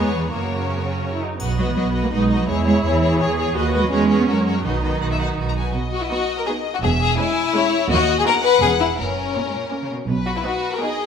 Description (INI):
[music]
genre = cinematic, playful, whimsical film cue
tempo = 166 BPM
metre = 3/4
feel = straight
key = B major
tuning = A4 = 439 Hz
[part]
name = clear studio violin section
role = melody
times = 0.0-11.1 s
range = A#4 to A#5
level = -27 LUFS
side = left 5 dB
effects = none
[part]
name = rich studio violin section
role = second line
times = 0.0-11.1 s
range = C#4 to C#5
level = -22 LUFS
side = left 5 dB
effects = none
[part]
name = warm studio viola section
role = accompaniment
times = 0.0-11.1 s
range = G#3 to G#4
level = -26 LUFS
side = right 2 dB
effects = none
[part]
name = rich studio double bass section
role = bass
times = 0.0-10.4 s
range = E1 to F#2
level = -24 LUFS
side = right 3 dB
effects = none
[part]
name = warm studio cello section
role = bass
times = 0.0-10.4 s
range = D#2 to B3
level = -23 LUFS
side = right 2 dB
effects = none
[part]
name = triangle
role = percussion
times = 1.4-2.1 s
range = none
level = -42 LUFS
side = left 3 dB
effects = none
[sound]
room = moderate scoring stage reverb, RT60 1.6 s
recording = minimal, uncompressed stereo recording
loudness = -17 LUFS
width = side -7 dB against mid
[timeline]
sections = 0.0-5.7 A section; 5.7-11.1 A section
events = none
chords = 0.3 F#; 1.4 B; 2.5 C#m/E; 3.6 B/D#; 3.9 C#m7/E; 4.3 F#; 4.6 B; 6.8 C#m/E; 7.9 B/D#; 8.6 C#m7/E; 9.0 F#; 10.1 B